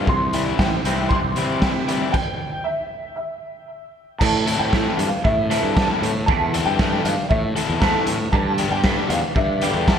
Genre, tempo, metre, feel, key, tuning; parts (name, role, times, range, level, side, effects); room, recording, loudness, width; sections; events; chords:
indie rock; 116 BPM; 4/4; straight; A minor; A4 = 439 Hz
crunchy overdriven guitar; riff; 0.0-10.0 s; E3 to A4; -25 LUFS; left 8 dB
twangy electric guitar; riff; 0.0-10.0 s; G2 to C4; -28 LUFS; right 9 dB; ensemble chorus
fuzz fingered electric bass; bass; 0.0-10.0 s; A1 to C3; -25 LUFS; equal; overdrive
dark upright piano; melody; 0.1-10.0 s; D5 to C6; -25 LUFS; equal; ensemble chorus, ping-pong delay
raw garage drum kit; drums; 0.1-10.0 s; crash cymbal, hi-hat, kick drum, snare drum; -22 LUFS; equal; gated reverb
overdriven tonewheel organ; sustained chords; 8.3-10.0 s; G3 to B4; -34 LUFS; right 1 dB
light reverb, small room ambience; bright 1980s-style digital production; -18 LUFS; side -8 dB against mid
0.0-4.2 A section; 4.2-10.0 B section
stop 2.2-4.2
0.1 C; 4.2 Am; 8.3 G